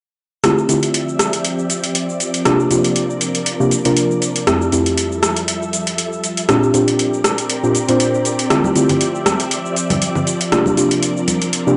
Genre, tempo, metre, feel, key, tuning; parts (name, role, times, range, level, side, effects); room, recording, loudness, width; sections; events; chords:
deep house; 119 BPM; 4/4; swing 55% on 16ths; D minor; A4 = 440 Hz
soft string machine; sustained chords; 0.7-11.8 s; F3 to E5; -25 LUFS; equal; ensemble chorus
deep mellow chord stab; stabs; 0.4-11.8 s; F2 to C5; -19 LUFS; equal; chorus, analog delay
deep house drum kit; drums; 0.4-11.8 s; hi-hat, rim click, shaker; -21 LUFS; equal; overdrive
congas; percussion; 8.6-11.4 s; -24 LUFS; equal
moderate lush hall reverb, RT60 1.9 s, digital ambience; dry, gritty hardware recording, transformer saturation, nothing above 10.7 kHz; -17 LUFS; mono
0.4-11.8 A section
0.4 Dm11; 2.2 C9sus4; 4.5 Fmaj9; 6.5 Bb69; 8.5 Dm11; 10.3 C9sus4